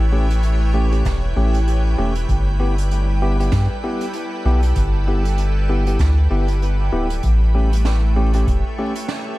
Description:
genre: ambient dub.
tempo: 97 BPM.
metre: 4/4.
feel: swing 58% on 16ths.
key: A mixolydian.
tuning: A4 = 440 Hz.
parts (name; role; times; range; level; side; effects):
soft additive organ-like pad; sustained chords; 0.0-9.4 s; G3 to G5; -27 LUFS; right 1 dB; ensemble chorus, built-in reverb.
soft dub sub bass; bass; 0.0-8.6 s; D1 to G2; -17 LUFS; equal; none.
bell-like tine electric piano; stabs; 0.1-8.9 s; A3 to G4; -25 LUFS; left 1 dB; dub echo.
jazz brush drum kit; drums; 0.3-9.2 s; hi-hat, snare drum; -32 LUFS; right 4 dB; dub echo.
electronic kick drum; drums; 1.1-8.6 s; none; -23 LUFS; equal; none.
room: small room ambience.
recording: vinyl crackle.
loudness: -16 LUFS.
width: side -18 dB against mid.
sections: 0.0-7.2 A section; 7.2-9.4 B section.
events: none.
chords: 0.0 A7; 2.3 G6; 7.2 A7.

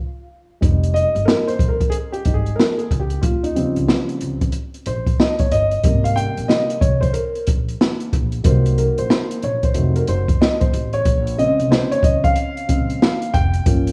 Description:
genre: hip hop, jazz-hop.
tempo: 92 BPM.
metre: 4/4.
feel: swing 63% on 16ths.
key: F minor.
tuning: A4 = 438 Hz.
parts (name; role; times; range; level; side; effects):
dark upright piano; accompaniment; 0.6-13.9 s; C3 to G5; -23 LUFS; equal; none.
upright bass; bass; 0.6-13.9 s; F1 to Eb2; -24 LUFS; equal; none.
open jazz drum kit; drums; 0.6-13.9 s; hi-hat, kick drum, snare drum; -20 LUFS; equal; vintage 12-bit sampler grit.
room: moderate plate reverb, RT60 1.6 s, small room ambience.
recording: rough home demo mix.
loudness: -18 LUFS.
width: mono.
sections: 0.6-13.9 A section.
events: break 0.0-0.6; upright piano solo 0.6-13.9.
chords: 0.0 N.C.; 0.6 Fm9; 3.2 Eb13; 5.8 Abmaj9; 8.4 Cm7b5; 9.8 F7b9; 11.1 Bbm7.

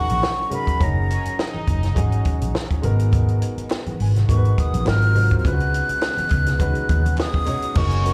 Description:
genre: lush 1970s-style soul.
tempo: 104 BPM.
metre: 4/4.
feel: swing 54% on 16ths.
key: F# major.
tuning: A4 = 440 Hz.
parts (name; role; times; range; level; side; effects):
breathy mellow silver concert flute; melody; 0.0-8.1 s; G#5 to F#6; -27 LUFS; equal; plate reverb, slapback echo.
warm studio violin section; second line; 0.0-2.2, 7.8-8.1 s; C#4 to G#5; -34 LUFS; equal; plate reverb.
warm concert grand piano; accompaniment; 0.0-8.1 s; F#3 to C#5; -31 LUFS; equal; plate reverb, slapback echo.
soft string machine; sustained chords; 0.0-8.1 s; C#3 to A#5; -38 LUFS; equal; none.
vintage muted fingered electric bass; bass; 0.1-8.1 s; F#1 to D#2; -22 LUFS; equal; none.
compact cocktail drum kit; drums; 0.1-8.1 s; crash cymbal, hi-hat, kick drum, snare drum; -25 LUFS; equal; none.
congas; percussion; 0.1-8.0 s; none; -34 LUFS; equal; none.
group handclap; percussion; 3.7-7.3 s; none; -43 LUFS; equal; none.
room: light reverb.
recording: live gig heard through the venue's PA, club reverb.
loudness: -20 LUFS.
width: mono.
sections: 0.0-7.8 A section.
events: none.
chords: 0.0 F#69; 2.8 G#m7; 4.9 G#13; 5.4 C#9sus4.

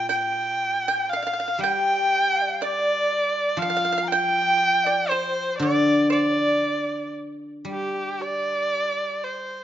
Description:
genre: chinese traditional, Chinese chamber ensemble.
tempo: 59 BPM.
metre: 2/4.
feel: rubato.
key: unclear.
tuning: A4 = 440 Hz.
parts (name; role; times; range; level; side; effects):
dark erhu; melody; 0.0-9.6 s; G4 to G5; -22 LUFS; right 1 dB; none.
breathy bright xiao; second line; 0.0-7.1 s; C5 to Bb5; -29 LUFS; left 5 dB; none.
pipa; second line; 0.0-7.1 s; C5 to G5; -29 LUFS; right 6 dB; none.
guzheng; accompaniment; 0.0-9.6 s; Bb2 to G3; -28 LUFS; left 1 dB; none.
room: moderate recital hall reverb, RT60 1.6 s.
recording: nothing above 7.6 kHz.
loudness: -20 LUFS.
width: side -11 dB against mid.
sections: 0.0-7.7 A section; 7.7-9.6 B section.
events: none.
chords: none.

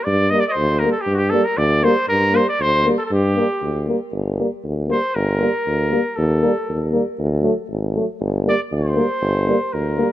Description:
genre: balkan folk, Balkan brass band.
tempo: 118 BPM.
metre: 2/4.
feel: swing 53% on 16ths.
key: G minor.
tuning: A4 = 442 Hz.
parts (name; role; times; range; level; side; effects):
warm trumpet; melody; 0.0-10.1 s; F#4 to Eb5; -21 LUFS; equal; none.
warm tuba; bass; 0.1-10.0 s; G1 to G2; -20 LUFS; equal; none.
mellow euphonium; accompaniment; 0.3-10.1 s; F#3 to G3; -26 LUFS; right 4 dB; none.
warm euphonium; accompaniment; 0.3-10.1 s; A3 to Bb3; -23 LUFS; left 3 dB; none.
room: light reverb, small room ambience.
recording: rough home demo mix.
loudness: -16 LUFS.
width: side -13 dB against mid.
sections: 0.0-4.1 A section; 4.1-10.1 B section.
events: trumpet solo 4.1-10.1.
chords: 0.1 Gm; 6.2 Eb; 7.2 D; 8.2 Gm.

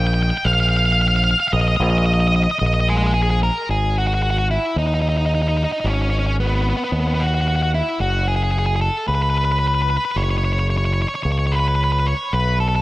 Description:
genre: post-rock.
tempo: 111 BPM.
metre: 4/4.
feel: straight.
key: unclear.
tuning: A4 = 440 Hz.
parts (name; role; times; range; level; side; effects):
octave-fuzz lead guitar; melody; 0.0-12.8 s; B3 to G5; -20 LUFS; equal; distortion, analog delay.
growling fingered electric bass; bass; 0.0-12.8 s; F#1 to D#2; -18 LUFS; equal; overdrive.
room: light reverb, digital ambience.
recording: none.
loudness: -16 LUFS.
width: side -18 dB against mid.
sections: 0.0-3.7 A section; 3.7-12.8 B section.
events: none.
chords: 0.0 D#5/A#; 3.7 G#5; 8.0 F#5.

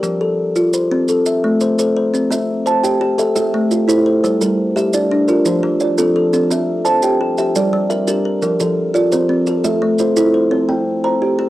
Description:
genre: southern african traditional, mbira-style interlocking cycle.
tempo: 114 BPM (dotted quarters).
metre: 12/8.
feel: straight.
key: C mixolydian.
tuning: A4 = 439 Hz.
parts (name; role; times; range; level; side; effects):
kalimba; arpeggios; 0.0-11.5 s; F3 to G5; -15 LUFS; left 2 dB; cassette tape.
maracas; percussion; 0.0-10.3 s; none; -28 LUFS; right 5 dB; none.
kalimba; arpeggios; 2.3-11.5 s; F3 to Bb5; -18 LUFS; right 3 dB; cassette tape.
room: light reverb.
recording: home recording on cassette.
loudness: -14 LUFS.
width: side -15 dB against mid.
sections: 0.0-10.5 A section.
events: none.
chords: 0.0 F; 1.1 Am; 2.1 C; 3.2 Am; 4.2 Gm; 5.3 F; 6.3 C; 7.4 Gm; 8.4 F; 9.5 Am; 10.5 C5.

